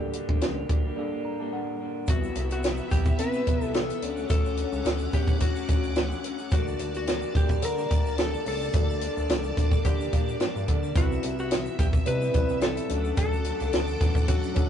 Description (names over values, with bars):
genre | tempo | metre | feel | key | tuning
indie pop, bedroom pop | 108 BPM | 4/4 | swing 55% on 16ths | unclear | A4 = 440 Hz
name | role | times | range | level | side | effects
electric slide guitar | melody | 0.0-14.7 s | F#4 to B4 | -32 LUFS | left 3 dB | tape echo
electric guitar through a small old amp | accompaniment | 0.0-14.7 s | G2 to E4 | -34 LUFS | left 2 dB | warbly pitch drift
tine electric piano | accompaniment | 0.0-2.1, 10.9-14.7 s | F#3 to Bb5 | -34 LUFS | right 2 dB | medium stereo tremolo
chorused synth bass | bass | 0.0-14.7 s | C2 to D3 | -31 LUFS | equal | none
compact cocktail drum kit | drums | 0.1-14.7 s | hi-hat, kick drum, snare drum | -25 LUFS | equal | none
string machine, violins | sustained chords | 2.1-14.7 s | B3 to D6 | -36 LUFS | equal | ensemble chorus
tube shaker | percussion | 2.1-14.7 s | none | -53 LUFS | right 5 dB | none
room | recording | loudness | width
light reverb | rough rehearsal-room recording, tube saturation, nothing above 10.4 kHz | -24 LUFS | side -9 dB against mid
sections
0.0-2.1 A section; 2.1-14.7 B section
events
break 1.0-2.1; tine electric piano fill 1.0-2.1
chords
0.0 Gmadd9; 2.1 Cmaj7; 4.0 Dmaj7; 6.5 Gmadd9; 11.0 Cmaj7; 12.9 Dmaj7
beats
0.41 0.97 1.52 | 2.08 2.63 3.19 3.75 | 4.30 4.86 5.41 5.96 | 6.52 7.07 7.63 8.18 | 8.74 9.29 9.85 10.40 | 10.96 11.51 12.07 12.62 | 13.18 13.73 14.28